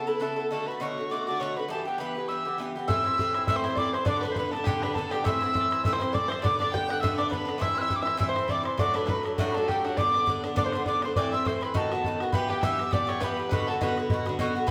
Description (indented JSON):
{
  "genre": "celtic folk, Celtic reel",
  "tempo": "203 BPM",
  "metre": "4/4",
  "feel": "swing 55% on 8ths",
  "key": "A dorian",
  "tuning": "A4 = 440 Hz",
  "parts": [
    { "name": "wooden whistle", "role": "melody", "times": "0.0-14.7 s", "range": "F#5 to G6", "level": "-32 LUFS", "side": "equal", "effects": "none" },
    { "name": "clear fiddle", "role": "second line", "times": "0.0-14.4 s", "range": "F#4 to G5", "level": "-38 LUFS", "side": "equal", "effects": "none" },
    { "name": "Irish bouzouki", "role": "accompaniment", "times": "0.0-14.7 s", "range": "G2 to A4", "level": "-32 LUFS", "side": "equal", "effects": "none" },
    { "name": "bluegrass banjo", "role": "second line", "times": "2.9-14.7 s", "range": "F#4 to G5", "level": "-38 LUFS", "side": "equal", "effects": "none" },
    { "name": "bodhran", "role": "percussion", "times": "2.9-14.7 s", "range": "none", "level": "-34 LUFS", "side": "equal", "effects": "none" }
  ],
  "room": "wet large studio reverb, RT60 1.0 s",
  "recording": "band playing live in one room",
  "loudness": "-27 LUFS",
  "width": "mono",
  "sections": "0.0-2.9 A section; 2.9-12.3 B section; 12.3-14.7 C section",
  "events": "none",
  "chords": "0.0 Aadd9; 0.5 Bm7; 1.7 Em; 2.9 Am; 4.1 G; 5.2 Am; 6.4 G; 7.6 C; 8.8 D; 10.0 G; 11.2 Am; 11.7 B7; 12.3 Em; 13.5 Bm",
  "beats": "0.20 | 0.50 0.80 1.10 1.39 | 1.69 1.99 2.29 2.58 | 2.88 3.17 3.47 3.77 | 4.06 4.36 4.66 4.95 | 5.25 5.54 5.84 6.13 | 6.43 6.72 7.02 7.31 | 7.61 7.90 8.20 8.49 | 8.79 9.09 9.38 9.68 | 9.97 10.27 10.56 10.86 | 11.15 11.45 11.74 12.04 | 12.33 12.63 12.92 13.21 | 13.51 13.80 14.10 14.39 | 14.68"
}